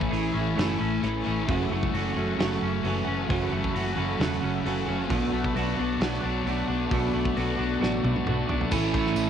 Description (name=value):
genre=rock, shoegaze and dream pop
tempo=133 BPM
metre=4/4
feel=straight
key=unclear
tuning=A4 = 441 Hz
part: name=analog string pad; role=sustained chords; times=0.0-9.3 s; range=A4 to C#6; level=-38 LUFS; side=right 1 dB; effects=ensemble chorus, cassette tape
part: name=twangy electric guitar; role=arpeggios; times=0.0-9.3 s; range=E3 to G#4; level=-35 LUFS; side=left 6 dB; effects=wide subtle chorus, cassette tape, analog delay
part: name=crunchy overdriven guitar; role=riff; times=0.0-9.3 s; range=F#2 to F#4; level=-28 LUFS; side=right 8 dB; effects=reverse reverb, cassette tape
part: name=thick fuzz guitar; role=riff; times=0.0-9.3 s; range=F#2 to B3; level=-30 LUFS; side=left 9 dB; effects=distortion, lush chorus, cassette tape
part: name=vintage muted fingered electric bass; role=bass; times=0.0-9.3 s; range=E1 to B1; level=-32 LUFS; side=equal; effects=none
part: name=loose indie drum kit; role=drums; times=0.0-9.3 s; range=crash cymbal, hi-hat, kick drum, snare drum, toms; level=-32 LUFS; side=equal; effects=cassette tape
part: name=tambourine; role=percussion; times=8.7-9.3 s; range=none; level=-43 LUFS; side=right 7 dB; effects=none
room=light reverb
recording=home recording on cassette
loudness=-24 LUFS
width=side -8 dB against mid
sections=0.0-8.7 A section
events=drum fill 7.8-8.7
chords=0.0 Amaj7; 1.5 F#m7; 5.1 Bm7; 8.7 Amaj7